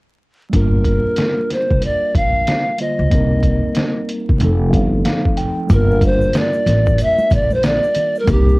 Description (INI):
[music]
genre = hip hop, jazz-hop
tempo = 93 BPM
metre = 4/4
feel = swing 61% on 16ths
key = G minor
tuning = A4 = 439 Hz
[part]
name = mellow tine electric piano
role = accompaniment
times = 0.5-8.6 s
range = D3 to G5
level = -22 LUFS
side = equal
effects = fast stereo tremolo, cassette tape
[part]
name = upright bass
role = bass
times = 0.5-8.6 s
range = F1 to C#2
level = -17 LUFS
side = equal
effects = none
[part]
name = trip hop sampler-style drum kit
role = drums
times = 0.5-8.5 s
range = hi-hat, kick drum, snare drum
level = -18 LUFS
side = equal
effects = overdrive, vintage 12-bit sampler grit, cassette tape
[part]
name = polished pan flute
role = melody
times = 0.6-8.6 s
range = G4 to F5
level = -18 LUFS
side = equal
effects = none
[part]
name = egg shaker and congas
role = percussion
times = 5.7-8.6 s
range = none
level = -30 LUFS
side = equal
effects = none
[sound]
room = moderate booth ambience, RT60 0.2 s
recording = home recording on cassette, vinyl crackle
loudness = -14 LUFS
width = side -23 dB against mid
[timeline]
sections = 0.5-5.7 A section; 5.7-8.6 B section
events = tine electric piano fill 4.7-5.7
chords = 0.5 Gm7; 3.1 Cm7; 4.4 F7; 5.7 Gm7